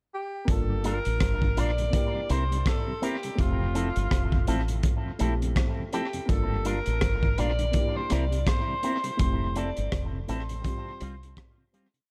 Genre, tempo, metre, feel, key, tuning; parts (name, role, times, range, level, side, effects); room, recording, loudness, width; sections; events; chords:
lovers rock reggae; 83 BPM; 4/4; swing 58% on 16ths; F major; A4 = 443 Hz
warm alto saxophone; melody; 0.1-11.7 s; F4 to D5; -35 LUFS; equal; tape echo
warm grand piano; accompaniment; 0.5-12.1 s; G3 to A5; -40 LUFS; equal
deep dub fingered electric bass; bass; 0.5-11.3 s; F1 to C2; -31 LUFS; equal
crunchy breakbeat drum kit; drums; 0.5-12.1 s; hi-hat, kick drum, rim click; -30 LUFS; equal; tape echo
mellow tonewheel organ; accompaniment; 0.7-12.0 s; F2 to F4; -41 LUFS; equal; chorus vibrato, slow rotary speaker
electric guitar with an envelope filter; stabs; 0.8-11.9 s; G3 to Bb4; -38 LUFS; equal; subtle chorus, tape echo
small room ambience; dark, warm production; -27 LUFS; mono
0.0-0.5 pickup bar; 0.5-12.1 verse
fade-out 9.2-12.1
0.5 Gm7; 1.9 C7; 3.4 Fmaj7; 6.3 Gm7; 7.7 C7; 9.2 Fmaj7; 10.6 Csus4